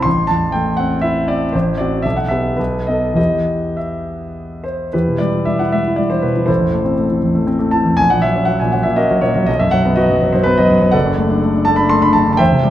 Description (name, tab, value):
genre	classical, romantic character piece for solo piano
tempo	98-126 BPM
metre	3/4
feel	rubato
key	E minor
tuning	A4 = 444 Hz
part	warm concert grand piano	solo	0.0-12.7 s	F#1 to C6	-13 LUFS	equal	none
room	wet recital hall reverb, RT60 1.6 s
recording	minimal, uncompressed stereo recording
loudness	-13 LUFS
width	side -12 dB against mid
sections	0.0-4.9 A section; 4.9-12.7 A section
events	none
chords	0.1 Am; 1.5 F#dim/A; 2.0 Em/B; 2.6 B7; 3.2 Em; 6.5 Am; 8.0 F#/A#; 9.5 B5; 10.9 D/F#